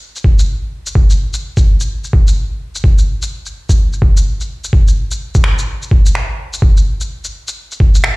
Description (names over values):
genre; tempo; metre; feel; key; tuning
future garage; 127 BPM; 4/4; swing 62% on 16ths; none; none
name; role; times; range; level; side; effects
electronic kick drum; drums; 0.2-7.9 s; none; -10 LUFS; equal; none
electronic shaker and finger snaps; drums; 0.2-8.2 s; none; -22 LUFS; equal; overdrive
room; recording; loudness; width
little or no reverb; played on a big sound system in a bare room, cassette tape, large studio reverb; -11 LUFS; side -24 dB against mid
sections
0.0-8.2 A section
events
none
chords
none